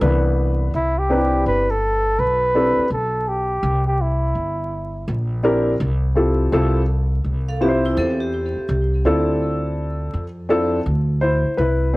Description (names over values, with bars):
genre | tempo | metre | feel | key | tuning
hip hop | 83 BPM | 4/4 | swing 64% on 16ths | C major | A4 = 440 Hz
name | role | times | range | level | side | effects
dark upright piano | accompaniment | 0.0-12.0 s | E3 to C5 | -19 LUFS | left 1 dB | cassette tape
upright bass | bass | 0.0-12.0 s | G1 to F2 | -21 LUFS | equal | transformer saturation
breathy flugelhorn | melody | 0.8-5.1 s | E4 to B4 | -20 LUFS | equal | none
vibraphone with hard mallets | second line | 7.5-9.0 s | C4 to F5 | -25 LUFS | right 1 dB | cassette tape, tape echo
room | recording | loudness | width
light reverb, small room ambience | home recording on cassette, vinyl crackle | -17 LUFS | side -21 dB against mid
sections
0.7-12.0 A section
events
none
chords
0.0 Cmaj7; 0.7 Cmaj9; 3.6 C9; 5.8 C; 6.5 Fmaj7sus2/C; 9.1 Dm9